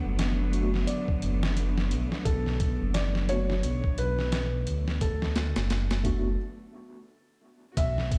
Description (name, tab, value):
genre	trip hop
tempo	87 BPM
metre	4/4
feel	swing 59% on 16ths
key	B minor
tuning	A4 = 440 Hz
part	felt-muted upright piano	melody	0.0-8.2 s	A4 to F#5	-38 LUFS	equal	tape echo
part	warm studio string section	sustained chords	0.0-8.2 s	D3 to F#4	-37 LUFS	equal	none
part	dark detuned saw bass	bass	0.1-8.2 s	F#1 to D2	-31 LUFS	equal	none
part	boom bap sampler-style drum kit	drums	0.2-8.2 s	hi-hat, kick drum, snare drum	-33 LUFS	equal	none
part	mellow tine electric piano	accompaniment	0.5-6.3 s	A3 to F#4	-37 LUFS	equal	tremolo, tape echo
room	light reverb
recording	played on a big sound system in a bare room, stone room reverb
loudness	-28 LUFS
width	mono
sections	0.0-7.8 A section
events	break 6.4-7.8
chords	0.0 Bm7